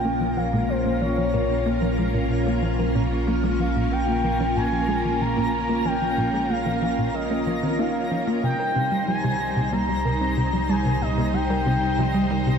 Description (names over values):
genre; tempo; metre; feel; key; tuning
ambient, sequencer-driven space music; 93 BPM; 4/4; straight; Bb dorian; A4 = 443 Hz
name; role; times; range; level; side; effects
expressive synth lead; melody; 0.0-12.6 s; C5 to Bb5; -27 LUFS; left 1 dB; chorus, tape echo
string machine, full ensemble; sustained chords; 0.0-12.6 s; G3 to C5; -26 LUFS; equal; ensemble chorus
thumb-piano-like synth pluck; arpeggios; 0.0-12.6 s; Bb2 to Bb4; -31 LUFS; right 2 dB; chorus, auto-pan, tape echo
tight sequencer bass; riff; 0.0-12.6 s; Bb2 to Bb3; -27 LUFS; equal; wide subtle chorus, tape echo
analog drone; bass; 0.0-12.6 s; Bb1 to C2; -29 LUFS; equal; chorus
twinkling granular texture; texture; 0.0-12.6 s; Bb5; -37 LUFS; right 1 dB; built-in reverb, lush chorus
room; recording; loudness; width
wet lush hall reverb, RT60 2.7 s; dreamy mix soaked in reverb, cassette tape; -20 LUFS; side -6 dB against mid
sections
0.0-12.6 A section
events
none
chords
0.0 Bbm; 8.4 Cm